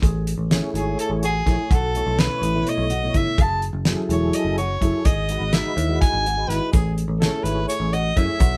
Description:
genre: progressive instrumental, band music in an uneven meter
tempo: 251 BPM (eighths)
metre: 7/8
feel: straight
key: A lydian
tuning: A4 = 440 Hz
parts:
  - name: dark grand piano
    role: arpeggios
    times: 0.0-8.6 s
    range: C#4 to G#4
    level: -32 LUFS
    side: equal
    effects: none
  - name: picked electric bass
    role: bass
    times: 0.0-8.6 s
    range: E1 to F#2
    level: -27 LUFS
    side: equal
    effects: none
  - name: damped 70s drum kit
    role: drums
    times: 0.0-8.5 s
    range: hi-hat, kick drum, snare drum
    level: -23 LUFS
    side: equal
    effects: none
  - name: mellow tonewheel organ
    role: accompaniment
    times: 0.5-8.4 s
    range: B2 to C#5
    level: -30 LUFS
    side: equal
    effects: chorus vibrato, slow rotary speaker
  - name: breathy soprano saxophone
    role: melody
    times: 0.8-8.6 s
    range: G#4 to A5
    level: -27 LUFS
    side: equal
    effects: none
  - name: tube shaker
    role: percussion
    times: 6.7-8.6 s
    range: none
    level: -42 LUFS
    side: equal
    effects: none
room: moderate studio reverb, RT60 0.5 s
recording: band playing live in one room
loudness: -21 LUFS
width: mono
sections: 0.0-8.6 A section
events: soprano saxophone solo 0.0-8.6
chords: 0.0 Amaj7; 1.7 B9sus4; 3.4 F#m9; 5.1 Emaj9/G#; 6.7 Amaj7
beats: | 0.03 0.27 0.51 0.75 0.99 1.23 1.47 | 1.71 1.95 2.19 2.43 2.67 2.90 3.14 | 3.38 3.62 3.86 4.10 4.34 4.58 4.82 | 5.06 5.30 5.54 5.78 6.01 6.25 6.49 | 6.73 6.97 7.21 7.45 7.69 7.93 8.17 | 8.40

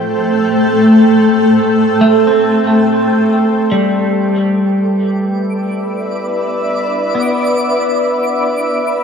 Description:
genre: ambient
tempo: free time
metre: none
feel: none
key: C major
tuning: A4 = 440 Hz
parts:
  - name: granular cloud pad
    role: sustained chords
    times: 0.0-9.0 s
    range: Ab3 to G5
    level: -12 LUFS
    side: equal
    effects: built-in reverb
  - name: clean electric guitar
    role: arpeggios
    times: 2.0-9.0 s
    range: G3 to C4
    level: -16 LUFS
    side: equal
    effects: wide subtle chorus, dub echo
  - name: twinkling granular texture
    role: texture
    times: 5.1-9.0 s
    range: D6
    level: -26 LUFS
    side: right 3 dB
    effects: built-in reverb
room: wet spring reverb, RT60 2.6 s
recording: echo-heavy mix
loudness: -11 LUFS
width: side -6 dB against mid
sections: 0.0-3.7 A section; 3.7-9.0 B section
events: fade-in on synth texture 3.7-9.0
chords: 0.0 Am7; 3.7 Cmaj9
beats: free time

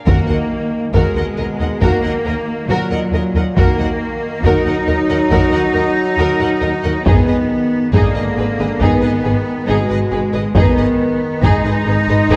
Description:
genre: cinematic, epic orchestral film score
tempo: 69 BPM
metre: 4/4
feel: straight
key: Eb harmonic minor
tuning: A4 = 439 Hz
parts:
  - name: rich symphonic violin section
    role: melody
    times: 0.1-12.4 s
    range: Ab4 to Gb5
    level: -29 LUFS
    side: equal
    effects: none
  - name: rich symphonic violin section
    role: second line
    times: 0.1-12.4 s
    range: Eb4 to Eb5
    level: -28 LUFS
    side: equal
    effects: none
  - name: rich symphonic viola section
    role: accompaniment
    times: 0.1-12.4 s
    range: Ab4 to Bb4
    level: -27 LUFS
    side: equal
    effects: none
  - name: dark French horn section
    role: sustained chords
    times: 0.1-12.4 s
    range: Gb4 to Cb5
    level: -28 LUFS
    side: equal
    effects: none
  - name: warm trombone section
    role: sustained chords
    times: 0.1-12.4 s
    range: Bb2 to Ab3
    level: -24 LUFS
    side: equal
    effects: none
  - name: clear symphonic cello section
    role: bass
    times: 0.1-12.4 s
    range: Gb3 to Eb4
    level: -21 LUFS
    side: equal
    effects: none
  - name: clear symphonic double bass section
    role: bass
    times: 0.1-12.4 s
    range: Ab1 to Eb2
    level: -23 LUFS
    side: equal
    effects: none
  - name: taiko ensemble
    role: drums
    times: 0.1-12.4 s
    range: none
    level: -20 LUFS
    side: equal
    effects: none
  - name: timpani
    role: percussion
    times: 0.1-1.3 s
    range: Eb3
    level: -25 LUFS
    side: equal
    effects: none
room: moderate concert hall reverb, RT60 2.4 s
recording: dark, warm production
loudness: -16 LUFS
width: mono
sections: 0.1-12.4 A section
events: none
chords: 0.1 Ebm; 7.1 Abm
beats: | 0.07 0.94 1.82 2.69 | 3.57 4.44 5.32 6.19 | 7.06 7.94 8.81 9.69 | 10.56 11.43 12.30

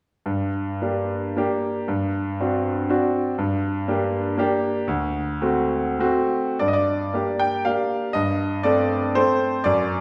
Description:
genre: classical, romantic triple-time dance for piano with dotted rhythms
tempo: 93-130 BPM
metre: 3/4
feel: rubato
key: G minor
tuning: A4 = 440 Hz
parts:
  - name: clear grand piano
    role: solo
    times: 0.3-10.0 s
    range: D2 to G5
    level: -23 LUFS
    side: equal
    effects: none
room: wet recital hall reverb, RT60 1.4 s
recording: heard from further back in the room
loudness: -23 LUFS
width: mono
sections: 0.3-6.6 A section; 6.6-10.0 B section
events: none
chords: 0.3 Gm; 1.9 D7/G; 3.4 Gm; 4.9 D7; 6.6 Gm; 8.1 Am7b5/G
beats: | 0.26 0.82 1.38 | 1.89 2.41 2.91 | 3.38 3.88 4.39 | 4.88 5.42 6.00 | 6.60 7.14 7.67 | 8.15 8.65 9.16 | 9.64

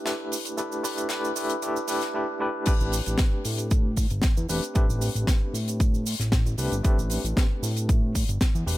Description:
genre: nu-disco, nu disco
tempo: 115 BPM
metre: 4/4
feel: swing 53% on 16ths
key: unclear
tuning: A4 = 440 Hz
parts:
  - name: mellow tine electric piano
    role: accompaniment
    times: 0.0-8.8 s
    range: A3 to B4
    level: -29 LUFS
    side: equal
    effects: medium tremolo, tape echo
  - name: tight funk drum kit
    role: drums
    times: 0.1-8.8 s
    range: cabasa, crash cymbal, hi-hat, snare drum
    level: -31 LUFS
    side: equal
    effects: high-pass filter on hats, high-pass filter on cymbals, high-pass filter on snare, high-pass filter on perc, high-pass filter on room
  - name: fat analog bass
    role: bass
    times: 2.7-8.8 s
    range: E1 to A2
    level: -27 LUFS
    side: equal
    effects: none
  - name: electronic kick drum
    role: drums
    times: 2.7-8.5 s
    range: none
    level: -23 LUFS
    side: equal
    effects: none
room: little or no reverb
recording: none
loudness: -23 LUFS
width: side -16 dB against mid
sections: 0.0-2.7 A section; 2.7-8.8 B section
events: build-up 0.0-2.7; drop 2.7-8.8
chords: 0.0 G69; 2.7 Am11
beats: 0.06 | 0.58 1.10 1.63 2.15 | 2.67 3.19 3.71 4.24 | 4.76 5.28 5.80 6.32 | 6.84 7.37 7.89 8.41

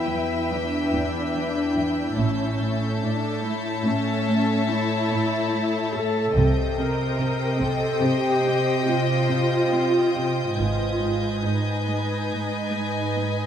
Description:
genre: cinematic, suspense film score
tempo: 72 BPM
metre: 5/4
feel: straight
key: unclear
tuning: A4 = 440 Hz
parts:
  - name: warm symphonic violin section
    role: melody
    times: 0.0-13.5 s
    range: G5 to A5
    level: -32 LUFS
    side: left 3 dB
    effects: none
  - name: warm chamber violin section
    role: second line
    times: 0.0-13.5 s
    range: B4 to E5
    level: -30 LUFS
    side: left 5 dB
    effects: none
  - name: dark symphonic viola section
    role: accompaniment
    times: 0.0-13.5 s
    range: C#4 to A#4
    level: -26 LUFS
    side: equal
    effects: none
  - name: soft additive organ-like pad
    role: sustained chords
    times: 0.0-13.5 s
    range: E4 to D#6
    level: -33 LUFS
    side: equal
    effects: ensemble chorus, built-in reverb
  - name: warm symphonic cello section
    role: bass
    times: 0.0-13.5 s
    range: E2 to C3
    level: -27 LUFS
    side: right 2 dB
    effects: none
  - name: warm studio violin section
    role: texture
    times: 0.0-13.5 s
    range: Eb6 to G6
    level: -37 LUFS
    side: left 1 dB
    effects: none
  - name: warm symphonic cello section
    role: riff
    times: 0.1-13.4 s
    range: E2 to C4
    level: -30 LUFS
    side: right 1 dB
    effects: none
  - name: warm symphonic double bass section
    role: bass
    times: 2.2-11.4 s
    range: G#1 to C2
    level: -30 LUFS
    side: right 2 dB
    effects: none
  - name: taiko ensemble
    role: drums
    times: 6.4-8.0 s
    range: none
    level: -32 LUFS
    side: equal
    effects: none
room: moderate concert hall reverb, RT60 2.4 s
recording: none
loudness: -21 LUFS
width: side -9 dB against mid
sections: 0.0-13.5 A section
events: none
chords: 0.0 Em; 2.2 A; 6.4 Cm; 10.6 G#m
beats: 0.52 1.35 | 2.18 3.01 3.85 4.68 5.52 | 6.35 7.19 8.03 8.87 9.71 | 10.57 11.44 12.31 13.18

